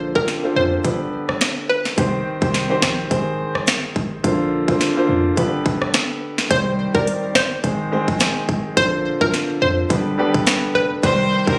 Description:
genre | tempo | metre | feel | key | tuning
dancehall | 106 BPM | 4/4 | swing 56% on 16ths | C minor | A4 = 440 Hz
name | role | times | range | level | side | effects
warm grand piano | accompaniment | 0.0-11.6 s | D3 to D5 | -23 LUFS | equal | none
warm 808-style bass | bass | 0.0-11.6 s | F1 to F2 | -29 LUFS | equal | none
hollow square pluck | melody | 0.2-1.8, 6.5-10.9 s | Bb4 to C5 | -23 LUFS | equal | chorus, digital delay
island pop drum kit | drums | 0.2-11.6 s | hi-hat, kick drum, rim click, snare drum | -22 LUFS | equal | none
rich violin | second line | 11.0-11.6 s | Bb4 to C5 | -21 LUFS | equal | digital delay
room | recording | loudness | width
light reverb | recorded on a phone in the room, studio reverb | -19 LUFS | mono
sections
0.0-6.5 A section; 6.5-11.6 B section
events
none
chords
0.0 Bbadd9; 0.8 G; 2.0 Cm; 3.1 Ab; 4.2 Bbadd9; 5.4 G; 6.5 Cm; 7.6 Ab; 8.8 Bbadd9; 9.9 G; 11.0 Cm

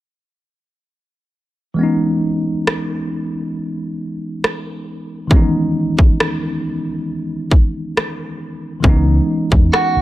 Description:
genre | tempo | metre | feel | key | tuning
contemporary R&B | 68 BPM | 4/4 | swing 54% on 16ths | C# minor | A4 = 441 Hz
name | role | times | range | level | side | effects
mellow tine electric piano | accompaniment | 1.7-10.0 s | D#3 to D#4 | -19 LUFS | equal | medium stereo tremolo
trap drum kit | drums | 2.7-9.9 s | kick drum, rim click | -14 LUFS | equal | none
vintage muted fingered electric bass | bass | 8.8-10.0 s | C#2 to E2 | -15 LUFS | equal | none
clean electric guitar | melody | 9.7-10.0 s | F#4 | -14 LUFS | right 3 dB | none
room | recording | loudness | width
light reverb, digital ambience | lossy compression artefacts | -15 LUFS | side -15 dB against mid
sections
1.8-8.8 A section; 8.8-10.0 B section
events
hi-hats muted 8.8-10.0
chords
1.8 C#m7

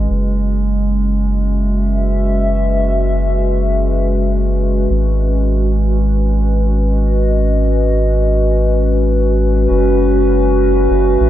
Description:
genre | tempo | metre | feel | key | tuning
ambient dub | free time | none | none | unclear | A4 = 441 Hz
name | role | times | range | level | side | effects
warbly tape-like pad | sustained chords | 0.0-11.3 s | G#3 to E5 | -16 LUFS | equal | chorus, built-in reverb
soft dub sub bass | bass | 0.0-11.3 s | F#1 to A1 | -15 LUFS | equal | none
room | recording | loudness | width
light reverb, digital ambience | none | -12 LUFS | side -12 dB against mid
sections
0.0-9.7 A section; 9.7-11.3 B section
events
none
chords
0.1 F#5; 4.9 G#m7; 9.7 F#7(no3)

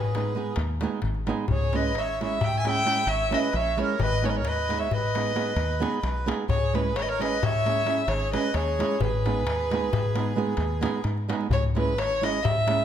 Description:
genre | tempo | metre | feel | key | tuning
balkan folk, Balkan wedding band | 264 BPM (eighths) | 11/8 | straight | unclear | A4 = 440 Hz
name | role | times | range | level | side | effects
dark fiddle | melody | 0.0-12.8 s | B4 to G#5 | -27 LUFS | equal | none
accordion | second line | 0.0-11.1 s | G#4 to E5 | -33 LUFS | right 2 dB | none
deep dub fingered electric bass | bass | 0.0-12.8 s | G#1 to G#2 | -30 LUFS | equal | none
darbuka | percussion | 0.0-12.8 s | none | -30 LUFS | left 4 dB | none
flamenco guitar | accompaniment | 0.1-12.8 s | G#3 to G#4 | -30 LUFS | right 5 dB | none
room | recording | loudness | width
moderate scoring stage reverb, RT60 1.8 s | close, detailed microphones | -23 LUFS | side -9 dB against mid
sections
0.0-11.5 A section; 11.5-12.8 A section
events
none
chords
0.0 G#m; 1.5 C#m; 4.0 G#m; 6.5 C#m; 9.0 G#m; 11.5 C#m

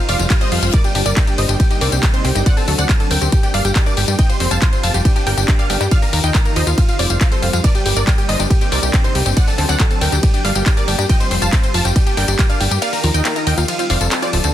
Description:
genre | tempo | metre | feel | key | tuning
uplifting trance | 139 BPM | 4/4 | straight | G minor | A4 = 439 Hz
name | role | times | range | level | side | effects
wide unison pluck | melody | 0.0-14.5 s | Eb4 to A5 | -23 LUFS | right 1 dB | sidechain pumping, ping-pong delay
supersaw stab | second line | 0.0-14.5 s | F5 to A6 | -26 LUFS | right 2 dB | sidechain pumping, ping-pong delay
lush unison pad | sustained chords | 0.0-14.5 s | C3 to Bb4 | -27 LUFS | equal | chorus, sidechain pumping
analog pluck | arpeggios | 0.0-14.5 s | F3 to G4 | -27 LUFS | left 3 dB | chorus, sidechain pumping, ping-pong delay
reverse cymbal | sound effects | 0.1-0.7 s | none | -28 LUFS | left 7 dB | none
plucky analog bass | bass | 0.1-14.5 s | D1 to G2 | -18 LUFS | equal | sidechain pumping
house drum kit | drums | 0.1-14.5 s | handclaps, hi-hat, ride cymbal, tambourine | -21 LUFS | left 3 dB | none
electronic kick drum | drums | 0.3-12.5 s | none | -15 LUFS | equal | none
room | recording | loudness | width
little or no reverb | dense, heavily limited modern master | -13 LUFS | side -12 dB against mid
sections
0.0-14.5 A section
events
drop 0.0-14.5; reverse cymbal 0.1-0.7; kick drops out 12.8-14.5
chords
0.0 Fsus2; 0.7 Gm; 1.6 Cm7; 2.5 D7; 3.3 Gm; 4.2 Fsus2; 5.1 Gm; 5.9 Ebadd9; 6.8 Fsus2; 7.6 Gm; 8.5 Cm7; 9.4 D7; 10.2 Gm; 11.1 Fsus2; 12.0 Gm; 12.8 Ebadd9; 13.7 Fsus2; 14.1 Dm7

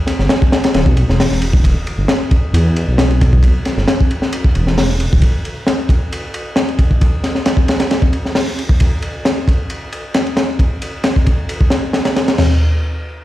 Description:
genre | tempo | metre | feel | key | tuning
breakbeat, breaks | 134 BPM | 4/4 | straight | E minor | A4 = 441 Hz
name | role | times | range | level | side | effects
crunchy breakbeat drum kit | drums | 0.1-12.5 s | crash cymbal, hi-hat, kick drum, ride cymbal, snare drum, toms | -13 LUFS | equal | none
dark detuned saw bass | bass | 0.2-5.2 s | D1 to E2 | -14 LUFS | equal | none
room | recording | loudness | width
light reverb | played on a big sound system in a bare room, stone room reverb | -12 LUFS | side -15 dB against mid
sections
0.0-12.4 A section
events
none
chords
none

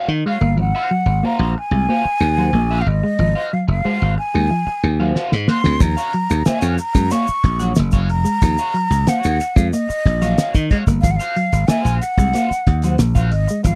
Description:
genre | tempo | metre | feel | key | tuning
funk | 92 BPM | 4/4 | straight | unclear | A4 = 436 Hz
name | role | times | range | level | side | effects
electric guitar at the edge of break-up | accompaniment | 0.0-13.7 s | Gb4 to Gb5 | -29 LUFS | equal | wah, subtle chorus
slap bass | bass | 0.1-13.8 s | F1 to Eb3 | -20 LUFS | equal | none
breathy concert flute | melody | 0.3-13.8 s | Eb5 to Db6 | -24 LUFS | equal | none
mellow electric guitar | riff | 0.3-13.8 s | F3 to C4 | -23 LUFS | equal | none
cloth-damped thuddy drum kit | drums | 5.2-13.8 s | hi-hat, kick drum, snare drum | -18 LUFS | equal | none
tube shaker | percussion | 5.8-13.8 s | none | -39 LUFS | equal | none
room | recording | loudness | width
little or no reverb | dry, close 1970s-style studio recording | -18 LUFS | mono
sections
0.0-13.8 A section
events
drum fill 5.2-5.8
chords
0.0 Ebm9; 0.6 Ab13; 5.8 Ebm9; 11.0 Ab13

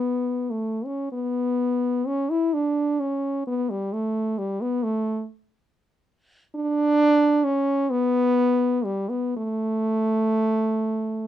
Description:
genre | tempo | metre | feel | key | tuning
classical, free, expressive piece for unaccompanied French horn | 26-48 BPM (dotted quarters) | 6/8 | rubato | unclear | A4 = 440 Hz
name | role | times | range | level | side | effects
warm French horn | solo | 0.0-11.3 s | G3 to E4 | -21 LUFS | equal | none
room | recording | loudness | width
light reverb | none | -21 LUFS | side -11 dB against mid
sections
0.0-1.1 A section; 1.1-11.3 A section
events
none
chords
none

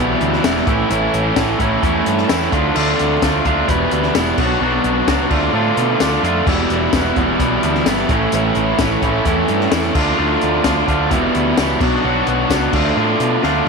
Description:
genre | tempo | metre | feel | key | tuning
indie rock | 129 BPM | 4/4 | straight | A mixolydian | A4 = 440 Hz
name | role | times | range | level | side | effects
raw garage guitar | riff | 0.0-13.7 s | E2 to F#4 | -15 LUFS | right 1 dB | overdrive
growling picked electric bass | bass | 0.0-13.6 s | E1 to B2 | -22 LUFS | right 1 dB | overdrive
compact cocktail drum kit | drums | 0.2-13.5 s | crash cymbal, hi-hat, kick drum, snare drum, tambourine | -22 LUFS | left 3 dB | none
room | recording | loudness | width
moderate echo chamber reverb, RT60 1.6 s, small room ambience | 1960s-style stereo | -14 LUFS | side -4 dB against mid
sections
0.0-13.7 A section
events
drum fill 13.4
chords
0.0 Em; 0.7 A; 2.5 Dm; 3.7 Em; 4.4 Bmadd9; 5.3 Dm; 6.5 Em; 8.1 A; 10.0 Dm; 11.1 Em; 11.8 Bmadd9; 12.7 Dm

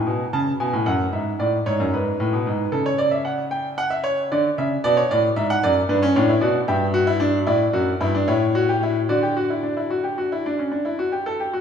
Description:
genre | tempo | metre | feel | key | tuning
classical, baroque-style 3-part fugue for grand piano | 76 BPM (dotted quarters) | 12/8 | straight | D major | A4 = 440 Hz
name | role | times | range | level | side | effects
bright grand piano | solo | 0.0-11.6 s | F#2 to A5 | -19 LUFS | equal | none
room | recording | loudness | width
wet scoring stage reverb, RT60 2.1 s | small room ambience | -19 LUFS | side -7 dB against mid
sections
0.0-11.6 A section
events
none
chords
0.0 B5; 1.1 E (rootless); 2.7 A/C# (rootless); 4.3 D; 5.9 G; 7.5 D; 8.3 A7; 9.1 D

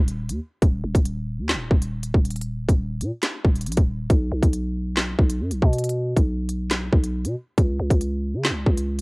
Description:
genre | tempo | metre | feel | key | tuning
hip hop, drill | 138 BPM | 4/4 | half-time | unclear | A4 = 440 Hz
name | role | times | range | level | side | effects
growling 808-style bass | bass | 0.0-9.0 s | Eb1 to Db3 | -25 LUFS | equal | none
drill drum kit | drums | 0.1-9.0 s | handclaps, hi-hat, kick drum, snare drum | -19 LUFS | equal | none
room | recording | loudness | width
little or no reverb | home recording on cassette | -20 LUFS | side -31 dB against mid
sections
0.0-9.0 A section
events
none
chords
none

